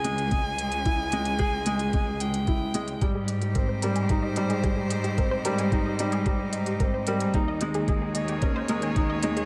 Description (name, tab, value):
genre	piano and strings electronica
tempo	111 BPM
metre	4/4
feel	straight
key	Ab major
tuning	A4 = 438 Hz
part	rich violin	melody	0.0-3.0 s	G5 to Ab5	-33 LUFS	equal	delay
part	warm baby grand piano	riff	0.0-9.5 s	G3 to Ab4	-31 LUFS	equal	delay
part	rich symphonic cello section	bass	0.0-9.5 s	Db2 to Ab2	-33 LUFS	equal	sidechain pumping
part	electronic hi-hat	drums	0.0-9.5 s	none	-39 LUFS	equal	small room ambience
part	electronic kick drum	drums	0.3-9.1 s	none	-29 LUFS	equal	small room ambience
part	unison pluck	arpeggios	3.0-9.5 s	Eb4 to Ab5	-37 LUFS	equal	sidechain pumping, delay
part	bright string quartet	sustained chords	3.2-9.5 s	Eb3 to Db5	-37 LUFS	equal	sidechain pumping
room	light reverb, studio reverb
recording	none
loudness	-26 LUFS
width	mono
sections	0.0-9.5 A section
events	none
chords	0.0 Dbm; 3.0 Abmaj7; 7.3 Eb7sus4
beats	0.32 | 0.86 1.40 1.94 2.48 | 3.02 3.56 4.10 4.64 | 5.18 5.72 6.26 6.80 | 7.35 7.89 8.43 8.97